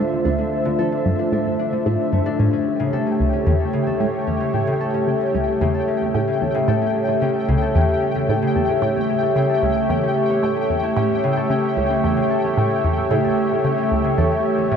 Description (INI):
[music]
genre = ambient, sequencer-driven space music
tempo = 112 BPM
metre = 4/4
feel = straight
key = unclear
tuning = A4 = 439 Hz
[part]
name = sweeping resonant pad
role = sustained chords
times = 0.0-14.8 s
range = A3 to E5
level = -20 LUFS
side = equal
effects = chorus
[part]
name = concert harp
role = arpeggios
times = 0.0-14.8 s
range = C#3 to C#5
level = -26 LUFS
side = moving between left 6 dB and right 1 dB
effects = auto-pan, analog delay
[part]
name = resonant blip pluck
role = riff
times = 0.0-14.8 s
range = C#2 to F3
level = -23 LUFS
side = right 1 dB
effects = chorus, phaser, analog delay
[part]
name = pulsing gated texture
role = texture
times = 0.0-14.8 s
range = E5 to G5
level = -30 LUFS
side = left 2 dB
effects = chorus, built-in reverb
[sound]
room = wet huge ambient reverb, RT60 7.6 s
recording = dreamy mix soaked in reverb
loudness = -17 LUFS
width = side -7 dB against mid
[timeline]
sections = 0.0-14.8 A section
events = fade-in on synth texture 0.0-14.8; filter sweep on synth arpeggio sound 0.0-14.8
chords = 0.0 Dm7; 2.4 A7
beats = | 0.25 0.79 1.32 1.86 | 2.40 2.93 3.47 4.00 | 4.54 5.08 5.61 6.15 | 6.68 7.22 7.75 8.29 | 8.82 9.36 9.90 10.43 | 10.97 11.50 12.04 12.57 | 13.11 13.65 14.18 14.72